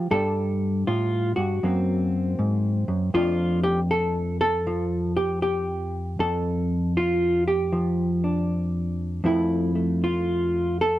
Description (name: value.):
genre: solo jazz.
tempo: 79 BPM.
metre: 4/4.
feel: swing 66% on 8ths.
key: F major.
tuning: A4 = 440 Hz.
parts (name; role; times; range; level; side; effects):
hollow-body jazz guitar; solo; 0.0-11.0 s; F2 to A4; -22 LUFS; equal; none.
room: little or no reverb.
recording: dry, close 1970s-style studio recording.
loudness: -22 LUFS.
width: side -14 dB against mid.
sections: 0.0-9.2 A section; 9.2-11.0 B section.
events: none.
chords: 0.1 Gsus2; 1.6 Gb; 3.1 F69; 9.2 Fmaj7.